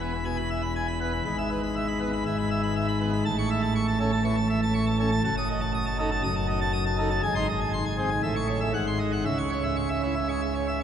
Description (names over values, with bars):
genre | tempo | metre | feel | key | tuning
classical, organ toccata | 120 BPM | 4/4 | straight | unclear | A4 = 441 Hz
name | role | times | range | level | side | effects
pipe organ, plenum | solo | 0.0-10.8 s | E1 to D#6 | -24 LUFS | equal | none
room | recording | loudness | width
wet cathedral reverb, RT60 5.2 s | none | -24 LUFS | side -8 dB against mid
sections
0.0-10.8 A section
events
none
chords
0.0 E; 1.3 E/G#; 3.2 A; 5.2 D#dim/F#; 7.2 G#; 8.2 A; 8.7 G#7; 9.3 C#m